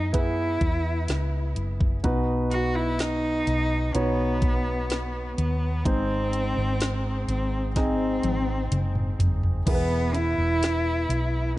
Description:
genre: pop ballad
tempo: 63 BPM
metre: 4/4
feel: straight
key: unclear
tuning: A4 = 439 Hz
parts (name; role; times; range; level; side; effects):
- warm cello; melody; 0.0-11.6 s; B3 to F#4; -28 LUFS; equal; none
- warm grand piano; accompaniment; 0.0-11.6 s; G#2 to D#5; -29 LUFS; right 1 dB; none
- hollow-body short-scale fingered electric bass; bass; 0.0-11.6 s; E1 to F#2; -27 LUFS; equal; none
- smooth R&B drum kit; drums; 0.1-11.3 s; crash cymbal, hi-hat, kick drum, snare drum, toms; -26 LUFS; equal; none
room: digital ambience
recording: dark, warm production, nothing above 10.5 kHz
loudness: -23 LUFS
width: side -17 dB against mid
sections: 0.0-9.7 A section; 9.7-11.6 B section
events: drum fill 7.8-9.7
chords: 0.0 E; 2.0 B; 5.9 G#; 9.7 E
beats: 0.14 1.09 | 2.04 3.00 3.95 4.90 | 5.86 6.81 7.76 8.71 | 9.66 10.62 11.57

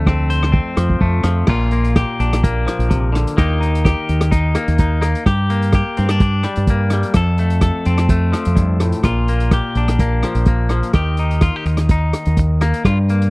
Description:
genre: highlife guitar band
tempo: 127 BPM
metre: 4/4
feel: straight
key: Bb major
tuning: A4 = 440 Hz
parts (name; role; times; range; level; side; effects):
- clean electric guitar; accompaniment; 0.0-13.3 s; F2 to C5; -20 LUFS; left 2 dB; spring reverb
- deep dub fingered electric bass; bass; 0.0-13.3 s; Bb1 to G2; -16 LUFS; equal; none
- vintage drum kit; drums; 0.1-13.3 s; crash cymbal, hi-hat, kick drum, rim click; -17 LUFS; equal; none
room: little or no reverb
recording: dry, close 1970s-style studio recording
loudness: -14 LUFS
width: side -24 dB against mid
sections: 0.0-1.5 A section; 1.5-13.3 B section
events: none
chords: 0.0 F; 1.5 Bb; 3.4 Eb; 5.3 Gm; 7.2 F; 9.1 Bb; 10.9 Eb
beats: 0.07 0.54 1.01 | 1.48 1.96 2.43 2.90 | 3.37 3.85 4.32 4.79 | 5.27 5.74 6.21 6.68 | 7.16 7.63 8.10 8.58 | 9.05 9.53 10.00 10.47 | 10.95 11.42 11.90 12.37 | 12.85

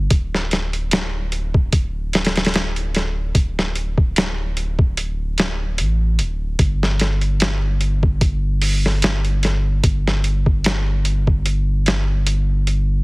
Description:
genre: trip hop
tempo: 74 BPM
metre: 4/4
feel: swing 55% on 16ths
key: unclear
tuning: A4 = 440 Hz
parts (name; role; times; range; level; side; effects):
- soft dub sub bass; bass; 0.0-13.0 s; D1 to A1; -20 LUFS; equal; none
- boom bap sampler-style drum kit; drums; 0.1-12.9 s; hi-hat, kick drum, snare drum; -19 LUFS; equal; none
room: little or no reverb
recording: heavily compressed radio sound, multiband compression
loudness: -17 LUFS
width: side -26 dB against mid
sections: 0.0-13.0 A section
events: none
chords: none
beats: | 0.11 0.92 1.73 2.54 | 3.35 4.16 4.97 5.78 | 6.59 7.40 8.21 9.03 | 9.84 10.65 11.46 12.27

